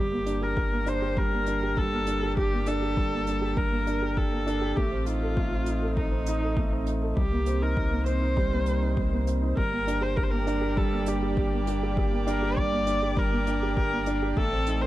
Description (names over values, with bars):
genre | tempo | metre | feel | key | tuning
piano and strings electronica | 100 BPM | 4/4 | straight | G minor | A4 = 443 Hz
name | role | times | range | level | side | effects
warm viola | melody | 0.0-14.9 s | Eb4 to D5 | -30 LUFS | left 1 dB | none
dark grand piano | riff | 0.0-14.9 s | G3 to A4 | -29 LUFS | right 2 dB | none
warm sub bass | bass | 0.0-14.9 s | G1 to C2 | -30 LUFS | equal | sidechain pumping
hi-hat | drums | 0.3-14.8 s | none | -44 LUFS | right 6 dB | none
electronic kick drum | drums | 0.6-14.5 s | none | -29 LUFS | equal | none
muted string quartet | sustained chords | 9.6-14.9 s | A2 to D5 | -36 LUFS | right 1 dB | none
room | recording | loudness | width
studio reverb | dark, warm production | -24 LUFS | side -15 dB against mid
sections
0.0-14.9 A section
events
none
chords
0.0 Gm; 4.8 Adim; 7.2 Cm7; 9.6 Gm